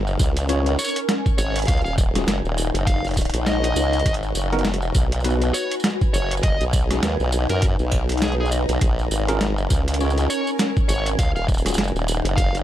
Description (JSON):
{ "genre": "glitch hop", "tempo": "101 BPM", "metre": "4/4", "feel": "swing 58% on 16ths", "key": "Bb phrygian", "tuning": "A4 = 441 Hz", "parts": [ { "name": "formant-sweep wobble bass", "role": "bass", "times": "0.0-12.6 s", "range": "Eb1 to Gb2", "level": "-22 LUFS", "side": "equal", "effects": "chorus" }, { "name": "granular cloud pad", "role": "texture", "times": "0.0-12.6 s", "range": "Db4 to Bb5", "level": "-28 LUFS", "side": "left 1 dB", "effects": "built-in reverb, sidechain pumping" }, { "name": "boom bap sampler-style drum kit", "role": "drums", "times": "0.1-12.6 s", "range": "hi-hat, rim click, snare drum, tambourine", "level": "-26 LUFS", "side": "right 1 dB", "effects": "overdrive" }, { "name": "electronic kick drum", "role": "drums", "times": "0.2-12.5 s", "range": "none", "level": "-20 LUFS", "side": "equal", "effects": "overdrive" }, { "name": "bell-like tine electric piano", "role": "stabs", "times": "0.5-11.8 s", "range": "Cb4 to Db5", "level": "-28 LUFS", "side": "left 1 dB", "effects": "fast stereo tremolo, vintage 12-bit sampler grit, sidechain pumping, ping-pong delay" }, { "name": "dark smooth lead guitar", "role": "melody", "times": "0.8-12.6 s", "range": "Ab4 to F5", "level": "-29 LUFS", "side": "equal", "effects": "overdrive, ping-pong delay" } ], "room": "light reverb", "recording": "none", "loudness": "-18 LUFS", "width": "side -12 dB against mid", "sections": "0.0-12.6 A section", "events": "none", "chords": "0.0 Bbm7; 1.7 Ebm7; 4.1 Abm7; 8.8 Bbm7; 11.2 Ebm7", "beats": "0.49 1.09 | 1.68 2.28 2.87 3.46 | 4.06 4.65 5.25 5.84 | 6.43 7.03 7.62 8.22 | 8.81 9.40 10.00 10.59 | 11.19 11.78 12.38" }